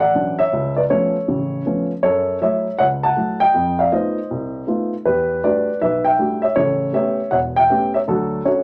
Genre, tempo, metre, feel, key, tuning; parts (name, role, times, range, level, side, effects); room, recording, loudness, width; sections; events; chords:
solo jazz; 159 BPM; 4/4; swing 64% on 8ths; D major; A4 = 439 Hz
dark baby grand piano; solo; 0.0-8.6 s; E1 to A5; -19 LUFS; equal
wet club reverb, RT60 0.6 s; -19 LUFS; mono
0.0-8.6 A section
0.0 Dmaj9; 0.5 C#aug7; 2.0 F#m7; 3.5 F7#11; 5.0 Em11; 6.6 A9; 8.1 Dmaj9